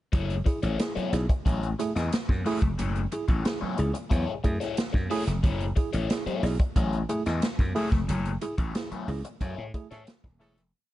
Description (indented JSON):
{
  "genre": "funk",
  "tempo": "90 BPM",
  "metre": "4/4",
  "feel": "straight",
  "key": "F# minor",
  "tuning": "A4 = 440 Hz",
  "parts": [
    { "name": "raw garage guitar", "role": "accompaniment", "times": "0.1-10.6 s", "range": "A3 to D#5", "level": "-34 LUFS", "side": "left 7 dB", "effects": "overdrive, phaser" },
    { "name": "bright tine electric piano", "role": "stabs", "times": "0.1-10.5 s", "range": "F#3 to G#4", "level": "-32 LUFS", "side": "right 2 dB", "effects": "medium stereo tremolo" },
    { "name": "slap bass", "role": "bass", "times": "0.1-10.7 s", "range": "D#1 to A2", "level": "-28 LUFS", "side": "equal", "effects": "none" },
    { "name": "swinging big-band drum kit", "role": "drums", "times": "0.1-10.7 s", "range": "hi-hat, kick drum, snare drum", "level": "-28 LUFS", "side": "equal", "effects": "none" },
    { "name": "clear horn section", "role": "second line", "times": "9.9-10.6 s", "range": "E3 to A4", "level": "-53 LUFS", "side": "right 1 dB", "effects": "none" }
  ],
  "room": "little or no reverb",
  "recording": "dark, warm production, nothing above 10.9 kHz",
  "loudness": "-25 LUFS",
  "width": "side -15 dB against mid",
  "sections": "0.1-10.7 groove",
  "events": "fade-out 8.1-10.7; band accent 8.1-10.7",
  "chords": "0.1 F#m9"
}